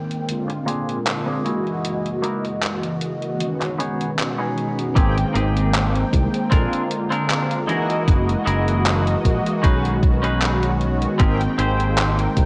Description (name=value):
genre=vaporwave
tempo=77 BPM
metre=4/4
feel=swing 54% on 16ths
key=unclear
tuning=A4 = 439 Hz
part: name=mellow synth brass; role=accompaniment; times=0.0-12.5 s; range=D3 to G5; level=-25 LUFS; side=equal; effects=analog chorus, analog delay
part: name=warbly tape-like pad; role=sustained chords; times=0.0-12.5 s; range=Gb2 to Eb6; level=-34 LUFS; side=equal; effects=chorus, built-in reverb
part: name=detuned 8-bit digital drum machine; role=drums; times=0.1-12.5 s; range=handclaps, hi-hat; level=-28 LUFS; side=equal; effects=vintage 12-bit sampler grit, gated reverb
part: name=clean electric guitar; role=riff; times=0.5-12.2 s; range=Bb3 to C5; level=-29 LUFS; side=equal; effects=lush chorus, low-pass filter, analog delay
part: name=fingered electric bass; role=bass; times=5.0-12.5 s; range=Gb1 to C2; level=-24 LUFS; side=equal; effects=none
part: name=electronic kick drum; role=drums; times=5.0-12.5 s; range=none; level=-19 LUFS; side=equal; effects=vintage 12-bit sampler grit
room=light reverb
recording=cassette tape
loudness=-21 LUFS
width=mono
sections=0.0-5.0 A section; 5.0-12.5 B section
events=none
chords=0.3 Bb9; 1.5 Gb13; 3.4 B69; 5.0 Abmaj9; 6.5 Bb9; 7.7 Gb13; 9.6 B69; 11.2 Abmaj9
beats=0.29 1.07 | 1.85 2.62 3.40 4.18 | 4.96 5.74 6.52 7.30 | 8.08 8.86 9.64 10.42 | 11.20 11.98